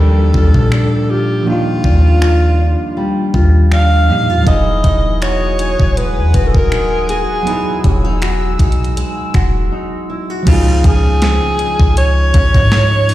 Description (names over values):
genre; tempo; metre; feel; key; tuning
contemporary R&B; 80 BPM; 4/4; swing 54% on 16ths; unclear; A4 = 439 Hz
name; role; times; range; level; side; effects
breathy alto saxophone; melody; 0.0-13.1 s; F4 to F5; -18 LUFS; equal; tape echo
bell-like tine electric piano; accompaniment; 0.0-13.1 s; F3 to G#4; -22 LUFS; right 3 dB; fast stereo tremolo
nylon-string guitar; arpeggios; 0.0-13.1 s; Db3 to F#4; -22 LUFS; left 2 dB; none
soft 808-style bass; bass; 0.0-13.1 s; D#1 to Bb2; -13 LUFS; equal; none
downlifter; sound effects; 0.0-4.5 s; none; -32 LUFS; left 1 dB; none
crisp 8-bit digital drum machine; drums; 0.3-13.1 s; crash cymbal, finger snaps, hi-hat, kick drum, snare drum; -14 LUFS; equal; overdrive
chorused pulse-width pad; sustained chords; 4.5-10.4 s; G#4 to E6; -26 LUFS; left 1 dB; sidechain pumping
room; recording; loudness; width
digital ambience; played on a big sound system in a bare room, stone room reverb; -11 LUFS; side -15 dB against mid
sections
0.0-10.5 A section; 10.5-13.1 B section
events
break 9.7-10.5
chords
0.0 Ebmaj9; 4.5 Emaj9; 10.5 Dbmaj9